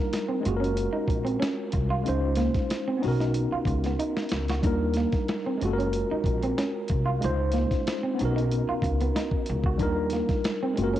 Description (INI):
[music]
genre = R&B, neo-soul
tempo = 93 BPM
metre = 4/4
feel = swing 54% on 16ths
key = unclear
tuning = A4 = 440 Hz
[part]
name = tine electric piano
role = accompaniment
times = 0.0-11.0 s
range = G3 to C5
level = -28 LUFS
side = left 1 dB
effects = overdrive, medium stereo tremolo
[part]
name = dusty soul sampler-style drum kit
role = drums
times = 0.1-11.0 s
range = hi-hat, kick drum, snare drum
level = -30 LUFS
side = equal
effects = cassette tape
[part]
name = clean electric guitar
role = second line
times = 0.3-11.0 s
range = Bb3 to F#4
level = -32 LUFS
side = right 4 dB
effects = none
[part]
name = upright bass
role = bass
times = 0.5-11.0 s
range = Gb1 to Eb2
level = -28 LUFS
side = equal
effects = none
[sound]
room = light reverb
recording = home recording on cassette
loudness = -24 LUFS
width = side -12 dB against mid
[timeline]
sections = 0.0-11.0 A section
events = drum fill 4.0-4.6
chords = 0.4 Gbmaj9; 2.1 Dbmaj9; 3.0 Bmaj9; 4.6 Ebmaj9; 5.6 Gbmaj9; 7.2 Dbmaj9; 8.2 Bmaj9; 9.8 Ebmaj9